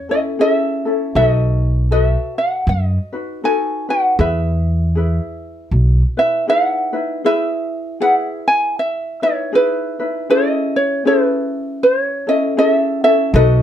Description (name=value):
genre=Hawaiian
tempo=79 BPM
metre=4/4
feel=swing 60% on 8ths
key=E major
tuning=A4 = 442 Hz
part: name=ukulele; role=melody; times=0.0-13.6 s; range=B4 to G#5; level=-17 LUFS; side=right 1 dB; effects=none
part: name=ukulele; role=accompaniment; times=0.0-13.6 s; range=C#4 to B4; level=-20 LUFS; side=left 3 dB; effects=none
part: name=upright bass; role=bass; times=1.2-6.0, 13.3-13.6 s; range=B1 to F#2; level=-14 LUFS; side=equal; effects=none
room=moderate studio reverb, RT60 0.6 s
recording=none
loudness=-14 LUFS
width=side -10 dB against mid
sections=0.0-7.2 A section; 7.2-13.6 A section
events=none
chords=0.0 Amaj7; 1.2 B7; 4.2 Emaj7; 10.3 Amaj7